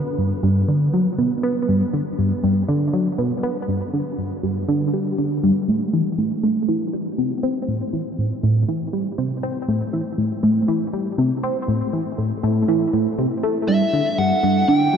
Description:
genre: ambient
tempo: 120 BPM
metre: 4/4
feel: straight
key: A dorian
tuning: A4 = 440 Hz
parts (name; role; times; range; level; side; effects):
- tight sequenced synth; riff; 0.2-15.0 s; G2 to C4; -18 LUFS; equal; chorus, phaser, tape echo
- fuzz lead guitar; melody; 13.7-15.0 s; E5 to G5; -20 LUFS; equal; distortion, tape echo
room: wet huge ambient reverb, RT60 7.8 s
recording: dark, warm production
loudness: -18 LUFS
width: side -7 dB against mid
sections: 0.0-5.7 A section; 5.7-15.0 B section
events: none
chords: 0.0 G; 5.7 Am; 13.7 G5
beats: 0.18 0.69 1.19 | 1.69 2.19 2.69 3.19 | 3.69 4.18 4.68 5.18 | 5.68 6.18 6.68 7.18 | 7.68 8.19 8.69 9.19 | 9.69 10.19 10.69 11.19 | 11.69 12.19 12.69 13.19 | 13.69 14.19 14.69

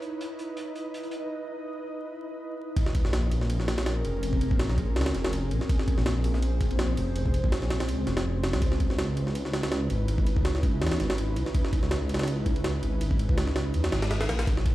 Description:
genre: drum and bass, jungle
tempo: 164 BPM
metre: 4/4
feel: swing 54% on 16ths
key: unclear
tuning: A4 = 440 Hz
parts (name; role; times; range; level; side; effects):
- ethereal airy pad; sustained chords; 0.0-14.7 s; C4 to Eb5; -34 LUFS; right 1 dB; ensemble chorus, built-in reverb
- hi-hat; drums; 0.0-1.2, 14.5-14.7 s; none; -46 LUFS; equal; high-pass filter on hats, studio reverb, high-pass filter on snare, high-pass filter on room
- jungle sampler-style drum kit; drums; 2.8-14.7 s; kick drum, ride cymbal, snare drum; -28 LUFS; equal; studio reverb
- impact and reverse cymbal; sound effects; 2.8-4.2, 13.9-14.5 s; none; -39 LUFS; equal; none
- dark detuned saw bass; bass; 3.0-14.7 s; F1 to Fb2; -27 LUFS; equal; none
room: light reverb, small room reverb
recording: played on a big sound system in a bare room, large studio reverb, vinyl crackle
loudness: -25 LUFS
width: side -16 dB against mid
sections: 0.0-2.8 A section; 2.8-14.7 B section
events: drop 2.8-14.7; impact 2.8-4.2; kick drops out 13.7-14.5; reverse cymbal 13.9-14.5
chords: 0.0 Dbm9 (rootless); 2.8 Bbm9; 8.6 Dbm9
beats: 0.20 0.57 0.94 | 1.30 1.67 2.03 2.40 | 2.77 3.13 3.50 3.86 | 4.23 4.59 4.96 5.33 | 5.69 6.06 6.42 6.79 | 7.16 7.52 7.89 8.25 | 8.62 8.98 9.35 9.72 | 10.08 10.45 10.81 11.18 | 11.55 11.91 12.28 12.64 | 13.01 13.38 13.74 14.11 | 14.47

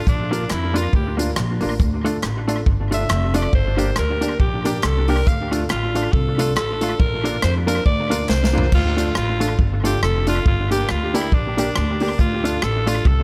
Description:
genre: ska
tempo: 139 BPM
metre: 4/4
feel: swing 58% on 8ths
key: D minor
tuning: A4 = 440 Hz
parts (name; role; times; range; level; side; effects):
- raspy alto saxophone; melody; 0.0-13.2 s; D4 to F5; -27 LUFS; equal; tape echo
- upright bass; bass; 0.1-13.2 s; F1 to F2; -24 LUFS; equal; none
- swinging big-band drum kit; drums; 0.1-13.2 s; crash cymbal, hi-hat, kick drum, rim click, snare drum, toms; -24 LUFS; equal; tape echo
- semi-hollow electric guitar; accompaniment; 0.3-13.0 s; A3 to G4; -30 LUFS; equal; tremolo, tape echo
- dark upright piano; stabs; 0.3-13.0 s; D4 to Bb4; -29 LUFS; equal; tape echo
- group handclap; percussion; 0.5-8.4 s; none; -37 LUFS; equal; none
room: light reverb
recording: none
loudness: -20 LUFS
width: mono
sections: 0.0-8.7 A section; 8.7-13.2 A section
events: alto saxophone solo 0.0-8.7, 8.7-13.2; drum fill 8.3-8.7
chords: 0.1 Bb; 1.8 Dm; 3.5 Gm; 5.3 Dm; 7.0 Bb; 8.7 Dm; 10.5 Gm; 12.2 Dm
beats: | 0.07 0.51 0.94 1.37 | 1.81 2.24 2.67 3.10 | 3.54 3.97 4.40 4.84 | 5.27 5.70 6.13 6.57 | 7.00 7.43 7.86 8.30 | 8.73 9.16 9.59 10.03 | 10.46 10.89 11.32 11.76 | 12.19 12.62 13.05

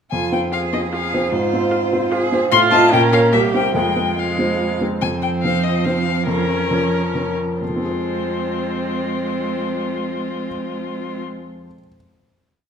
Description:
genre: quick classical-period movement for piano quartet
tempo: 125-152 BPM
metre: 3/4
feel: straight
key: F minor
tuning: A4 = 440 Hz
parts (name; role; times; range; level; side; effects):
- rich violin; melody; 0.1-11.2 s; F4 to C6; -22 LUFS; left 8 dB; none
- rich cello; second line; 0.1-11.2 s; F3 to Bb4; -24 LUFS; right 5 dB; none
- clear baby grand piano; accompaniment; 0.1-11.9 s; C2 to Eb5; -22 LUFS; equal; none
- rich viola; accompaniment; 0.5-11.2 s; Ab3 to F4; -24 LUFS; right 3 dB; none
room: wet recital hall reverb, RT60 1.3 s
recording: recorded in a church or concert hall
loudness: -17 LUFS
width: side -7 dB against mid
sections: 0.1-5.0 A section; 5.0-7.6 coda; 7.6-10.5 final chord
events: slowing down 4.4-7.6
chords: 0.1 Fm; 1.3 Fm/Ab; 2.5 F7/A; 2.9 Bbm; 3.3 C7(no3); 3.7 Fm; 5.0 F5; 6.3 Bbm/F; 7.6 Fm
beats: | 0.11 0.52 0.92 | 1.32 1.72 2.12 | 2.51 2.92 3.32 | 3.74 4.16 4.58 | 5.00 5.42 5.84 | 6.26 6.69 7.14 | 7.61 8.09 8.56 | 9.03 9.51 9.98

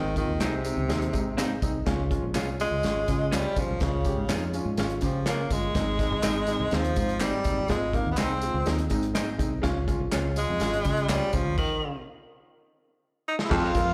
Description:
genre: uptempo 1960s-style soul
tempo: 124 BPM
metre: 4/4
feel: straight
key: unclear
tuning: A4 = 440 Hz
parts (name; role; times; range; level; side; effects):
- bright tenor saxophone; melody; 0.0-13.9 s; C3 to F4; -31 LUFS; equal; slapback echo
- warm baby grand piano; accompaniment; 0.0-13.9 s; Ab3 to F5; -34 LUFS; equal; slapback echo
- fingered electric bass; bass; 0.0-13.9 s; Gb1 to Db3; -33 LUFS; equal; none
- natural country drum kit; drums; 0.2-13.9 s; crash cymbal, hi-hat, kick drum, snare drum; -33 LUFS; equal; none
- tambourine and handclaps; percussion; 0.2-13.9 s; none; -42 LUFS; equal; none
- electric guitar through a small old amp; stabs; 0.4-11.2 s; C4 to Ab4; -37 LUFS; equal; slapback echo
- glockenspiel with soft plastic mallets; second line; 13.3-13.9 s; Eb6 to F6; -39 LUFS; equal; slapback echo
- raspy baritone saxophone; riff; 13.5-13.7 s; F2; -32 LUFS; equal; slapback echo
room: light reverb, small room ambience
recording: live gig heard through the venue's PA, club reverb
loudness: -27 LUFS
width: mono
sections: 0.0-13.5 A section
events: grand piano fill 1.1-1.9; stop 11.6-13.5; drum fill 12.5-13.5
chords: 0.0 Ab; 1.9 Db; 5.8 Ab; 9.6 Db; 11.6 N.C.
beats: 0.41 0.89 1.38 | 1.87 2.35 2.84 3.32 | 3.81 4.30 4.78 5.27 | 5.75 6.24 6.73 7.21 | 7.70 8.18 8.67 9.15 | 9.64 10.12 10.61 11.09 | 11.58 12.06 12.55 13.03 | 13.51

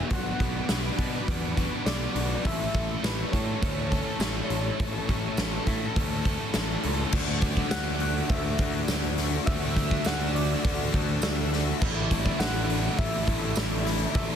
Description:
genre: rock, shoegaze and dream pop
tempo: 103 BPM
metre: 4/4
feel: straight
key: D major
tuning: A4 = 441 Hz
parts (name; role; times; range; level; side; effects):
- soft struck synth lead; melody; 0.0-14.4 s; B4 to F#5; -36 LUFS; left 2 dB; chorus, analog delay
- analog string pad; sustained chords; 0.0-14.4 s; F#4 to E6; -39 LUFS; equal; ensemble chorus
- biting overdriven guitar; riff; 0.0-14.4 s; A2 to A4; -34 LUFS; right 12 dB; reverse reverb
- overdriven electric guitar; riff; 0.0-14.4 s; A2 to A4; -33 LUFS; left 14 dB; analog chorus
- overdriven picked electric bass; bass; 0.1-14.4 s; A1 to B2; -30 LUFS; equal; none
- huge arena drum kit; drums; 0.1-14.3 s; crash cymbal, hi-hat, kick drum, snare drum; -28 LUFS; equal; none
- tambourine; percussion; 0.7-13.7 s; none; -40 LUFS; right 9 dB; none
room: little or no reverb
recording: dense, heavily limited modern master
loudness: -24 LUFS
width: side -8 dB against mid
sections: 0.0-7.1 A section; 7.1-14.4 B section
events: none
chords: 0.1 Bm; 2.4 A; 7.1 Dadd9; 11.8 Asus4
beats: | 0.11 0.69 1.28 1.86 | 2.45 3.03 3.62 4.20 | 4.79 5.37 5.96 6.54 | 7.13 7.71 8.30 8.88 | 9.46 10.05 10.63 11.22 | 11.80 12.39 12.97 13.56 | 14.14

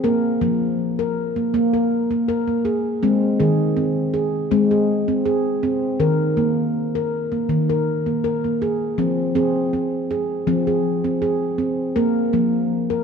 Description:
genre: world meditative, meditative tuned percussion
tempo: 81 BPM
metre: 4/4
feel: straight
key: unclear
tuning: A4 = 440 Hz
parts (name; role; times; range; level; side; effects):
- handpan; solo; 0.0-13.0 s; Eb3 to Bb4; -18 LUFS; equal; none
room: wet church reverb, RT60 3.1 s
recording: dark, warm production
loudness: -18 LUFS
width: side -6 dB against mid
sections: 0.0-13.0 A section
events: none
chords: 0.0 Bb5; 3.0 Ab; 6.0 Eb5; 9.0 Fm; 12.0 Bb5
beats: | 0.04 0.79 1.54 2.28 | 3.03 3.78 4.52 5.27 | 6.01 6.76 7.50 8.24 | 8.99 9.73 10.48 11.22 | 11.96 12.71

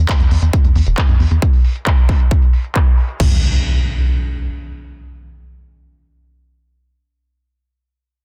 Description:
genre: uplifting trance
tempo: 135 BPM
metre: 4/4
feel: straight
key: unclear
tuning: A4 = 442 Hz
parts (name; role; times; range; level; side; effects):
- tight sequencer bass; bass; 0.0-4.5 s; E1 to F#2; -18 LUFS; equal; sidechain pumping
- big-room dance drum kit; drums; 0.1-3.3 s; crash cymbal, handclaps, hi-hat; -28 LUFS; equal; low-pass filter on hats, low-pass filter on snare, low-pass filter on cymbals
- electronic kick drum; drums; 0.1-3.3 s; none; -15 LUFS; equal; none
- impact; sound effects; 3.2-6.7 s; none; -24 LUFS; equal; none
room: little or no reverb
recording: dense, heavily limited modern master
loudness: -15 LUFS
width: mono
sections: 0.0-3.2 A section; 3.2-6.8 B section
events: filter sweep on drum 0.0-3.2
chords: none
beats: 0.09 0.53 0.98 | 1.42 1.87 2.31 2.76 | 3.20 3.64 4.09 4.53 | 4.98 5.42 5.87 6.31

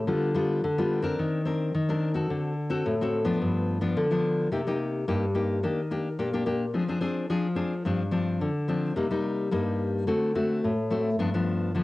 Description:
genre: samba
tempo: 108 BPM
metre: 4/4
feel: straight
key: C minor from 4.5 s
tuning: A4 = 442 Hz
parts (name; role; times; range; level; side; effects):
- nylon-string guitar; solo; 0.0-11.8 s; G2 to Bb4; -25 LUFS; left 1 dB; none
room: wet studio reverb, RT60 0.6 s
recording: home recording on cassette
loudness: -25 LUFS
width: side -18 dB against mid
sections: 0.0-4.5 A section; 4.5-11.8 B section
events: none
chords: 0.1 G7/D; 1.2 Cm9/Eb; 2.3 D7; 3.4 G7; 4.5 Cm7; 5.6 Ebmaj7; 6.7 Dm7b5/F; 7.9 G7sus4; 9.0 Cm7; 10.1 D7; 11.2 G7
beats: | 0.07 0.63 1.19 1.74 | 2.30 2.85 3.41 3.96 | 4.52 5.07 5.63 6.19 | 6.74 7.30 7.86 8.41 | 8.97 9.53 10.08 10.64 | 11.19 11.75

